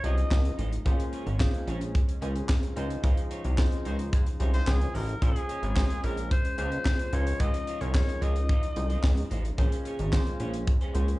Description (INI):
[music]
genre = early-eighties boogie funk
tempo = 110 BPM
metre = 4/4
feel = straight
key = Bb minor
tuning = A4 = 435 Hz
[part]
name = growling alto saxophone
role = melody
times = 0.0-0.6, 4.7-9.3 s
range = Ab4 to Eb5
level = -34 LUFS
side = left 2 dB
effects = slapback echo
[part]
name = barky tine electric piano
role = accompaniment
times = 0.0-11.2 s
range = Ab3 to C5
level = -38 LUFS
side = left 1 dB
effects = overdrive, wide subtle chorus, slapback echo
[part]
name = brassy analog pad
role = sustained chords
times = 0.0-11.2 s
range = Db3 to Eb4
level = -43 LUFS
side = left 1 dB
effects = none
[part]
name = electric guitar through a small old amp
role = riff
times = 0.0-11.1 s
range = Db4 to Db5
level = -41 LUFS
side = right 3 dB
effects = wide subtle chorus, slapback echo
[part]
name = chorused synth bass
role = bass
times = 0.0-11.2 s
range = Ab1 to Db2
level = -28 LUFS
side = equal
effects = none
[part]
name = tight funk drum kit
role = drums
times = 0.0-11.2 s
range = handclaps, hi-hat, kick drum, snare drum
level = -26 LUFS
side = equal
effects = none
[part]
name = mellow horn section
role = second line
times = 3.9-4.7 s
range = Ab3 to C5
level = -39 LUFS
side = left 1 dB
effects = slapback echo
[sound]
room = small room ambience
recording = live gig heard through the venue's PA, club reverb, nothing above 10.8 kHz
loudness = -25 LUFS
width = side -19 dB against mid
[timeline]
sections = 0.0-11.2 A section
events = band accent 3.0-5.2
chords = 0.0 Dbmaj9; 0.9 Bbm9; 2.8 Dbmaj9; 5.2 Bbm9; 7.1 Dbmaj9; 9.6 Bbm9